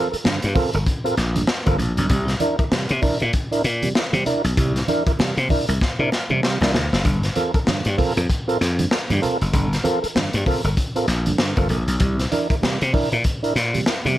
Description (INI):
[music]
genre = funk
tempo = 97 BPM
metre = 4/4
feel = swing 60% on 16ths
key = G dorian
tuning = A4 = 440 Hz
[part]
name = mellow tonewheel organ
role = stabs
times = 0.0-14.2 s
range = G2 to Bb4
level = -24 LUFS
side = right 2 dB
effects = overdrive, chorus vibrato, slow rotary speaker, plate reverb
[part]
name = slap bass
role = bass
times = 0.1-14.2 s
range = F#1 to C3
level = -21 LUFS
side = left 1 dB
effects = none
[part]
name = crunchy breakbeat drum kit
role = drums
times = 0.1-14.2 s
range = hi-hat, kick drum, snare drum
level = -22 LUFS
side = left 1 dB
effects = none
[part]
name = congas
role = percussion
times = 0.3-14.2 s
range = none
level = -30 LUFS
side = right 4 dB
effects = none
[sound]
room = light reverb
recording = none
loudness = -18 LUFS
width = side -14 dB against mid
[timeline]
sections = 0.0-14.2 A section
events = drum fill 5.8-7.1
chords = 0.0 Gm11; 2.1 C9; 7.1 Gm11; 12.0 C9